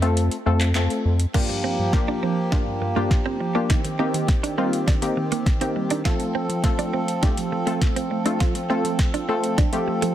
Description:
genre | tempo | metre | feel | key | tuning
dance-pop | 102 BPM | 4/4 | straight | G minor | A4 = 440 Hz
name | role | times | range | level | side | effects
wavetable chord stab | accompaniment | 0.0-10.1 s | A3 to A4 | -26 LUFS | left 2 dB | sidechain pumping
round analog bass | bass | 0.0-1.3 s | F2 | -20 LUFS | equal | sidechain pumping
smooth R&B drum kit | drums | 0.0-10.1 s | crash cymbal, handclaps, hi-hat, kick drum, snare drum | -22 LUFS | equal | soft clipping on snare
pedal harmonium | sustained chords | 1.3-10.1 s | Eb3 to A4 | -28 LUFS | equal | sidechain pumping
soft round pluck | arpeggios | 1.3-10.1 s | G2 to F4 | -30 LUFS | right 3 dB | chorus, sidechain pumping, digital delay
direct-recorded clean electric guitar | riff | 1.3-10.1 s | A3 to F4 | -29 LUFS | right 7 dB | analog chorus
room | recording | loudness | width
light reverb | dense, heavily limited modern master | -20 LUFS | side -11 dB against mid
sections
0.0-1.3 A section; 1.3-10.1 B section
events
kick muted 0.2-1.3; build-up 1.3-10.1; drum fill 1.3-10.1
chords
0.0 F; 1.3 Gm7; 3.7 Eb6; 6.1 F

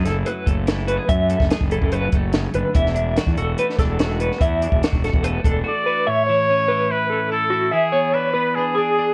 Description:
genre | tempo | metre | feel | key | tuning
math rock and midwest emo | 145 BPM | 4/4 | straight | A major | A4 = 439 Hz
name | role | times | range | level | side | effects
twelve-string electric guitar | accompaniment | 0.0-9.1 s | F#2 to G#4 | -29 LUFS | equal | lush chorus
electric guitar through a small old amp | arpeggios | 0.0-9.1 s | F#4 to E5 | -24 LUFS | equal | tremolo
fuzz fingered electric bass | bass | 0.0-5.6 s | E1 to F#2 | -25 LUFS | equal | overdrive
compact cocktail drum kit | drums | 0.1-5.5 s | hi-hat, kick drum, snare drum | -23 LUFS | equal | none
clear trumpet | melody | 5.7-9.1 s | G#4 to D5 | -23 LUFS | equal | slapback echo
room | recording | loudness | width
light reverb | worn, warbling old tape, cassette tape, warbly pitch drift | -20 LUFS | mono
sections
0.0-6.1 A section; 6.1-9.1 B section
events
none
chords
0.0 F#m9; 2.7 E9sus4; 6.1 A; 7.7 E7

